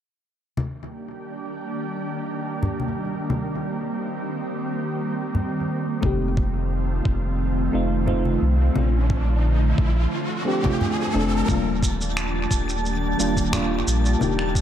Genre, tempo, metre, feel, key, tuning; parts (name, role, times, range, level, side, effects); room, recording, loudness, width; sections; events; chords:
sunset chillout; 88 BPM; 4/4; straight; Eb lydian; A4 = 435 Hz
ethereal airy pad; sustained chords; 0.9-14.6 s; D3 to G4; -27 LUFS; right 1 dB; ensemble chorus, built-in reverb
congas; percussion; 0.6-14.4 s; -28 LUFS; left 2 dB; tape echo
mellow FM electric piano; accompaniment; 6.0-14.6 s; G3 to A4; -26 LUFS; moving between left 7 dB and right 3 dB; chorus, phaser, auto-pan, dub echo
warm sub bass; bass; 6.0-14.6 s; Eb1 to C2; -23 LUFS; equal
electronic kick drum; drums; 6.0-14.6 s; -24 LUFS; equal
riser; sound effects; 7.6-11.5 s; -31 LUFS; equal
electronic shaker and finger snaps; drums; 11.5-14.6 s; -29 LUFS; right 1 dB; tape echo
twinkling granular texture; texture; 11.9-14.6 s; A5 to A6; -32 LUFS; right 2 dB; built-in reverb
light reverb; echo-heavy mix; -21 LUFS; side -10 dB against mid
0.6-11.5 A section; 11.5-14.6 B section
riser 7.6-11.5
0.6 Ebmaj7; 3.3 Cm7/Eb; 6.0 F7; 8.8 Bbmaj7; 11.5 Ebmaj7